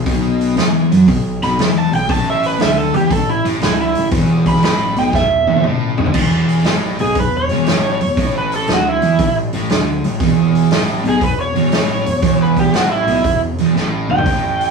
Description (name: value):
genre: blues rock power trio and southern rock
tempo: 118 BPM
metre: 4/4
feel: swing 67% on 8ths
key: unclear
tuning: A4 = 440 Hz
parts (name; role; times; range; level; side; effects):
- fuzz guitar; riff; 0.0-14.7 s; E2 to F#3; -16 LUFS; right 1 dB; distortion
- fuzz picked electric bass; bass; 0.0-14.7 s; E1 to F#2; -24 LUFS; equal; overdrive
- vintage drum kit; drums; 0.1-14.7 s; crash cymbal, hi-hat, kick drum, snare drum, toms; -19 LUFS; equal; none
- overdriven slide guitar; melody; 1.4-14.7 s; E4 to B5; -17 LUFS; right 2 dB; none
room: wet small room reverb, RT60 0.5 s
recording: rough rehearsal-room recording, warm saturation, small room ambience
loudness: -13 LUFS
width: side -5 dB against mid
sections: 0.0-6.2 A section; 6.2-14.7 B section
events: electric slide guitar solo 0.0-6.2; drum fill 5.1-6.2, 13.7-14.3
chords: 0.0 B5; 2.1 A5; 4.1 E5; 8.2 A5; 10.2 E5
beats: | 0.07 0.58 1.08 1.59 | 2.10 2.60 3.11 3.62 | 4.12 4.63 5.14 5.64 | 6.15 6.66 7.17 7.67 | 8.18 8.69 9.19 9.70 | 10.21 10.71 11.22 11.72 | 12.23 12.74 13.24 13.75 | 14.26